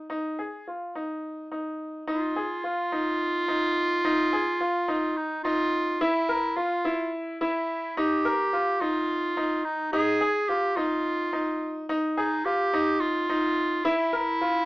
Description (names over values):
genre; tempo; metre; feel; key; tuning
contemporary instrumental, chamber music in an uneven meter; 214 BPM (eighths); 7/8; straight; F minor; A4 = 440 Hz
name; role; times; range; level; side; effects
bright baby grand piano; arpeggios; 0.0-14.7 s; Eb4 to Bb4; -27 LUFS; left 1 dB; none
bright clarinet; second line; 2.1-14.7 s; Eb4 to Ab4; -26 LUFS; right 1 dB; none
room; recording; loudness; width
moderate studio reverb, RT60 0.5 s; small speaker sound; -24 LUFS; side -21 dB against mid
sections
0.0-2.1 A section; 2.1-14.7 B section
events
none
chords
0.1 Fm7; 6.0 Bb5; 8.0 Eb; 9.9 Fm7; 13.8 Bb5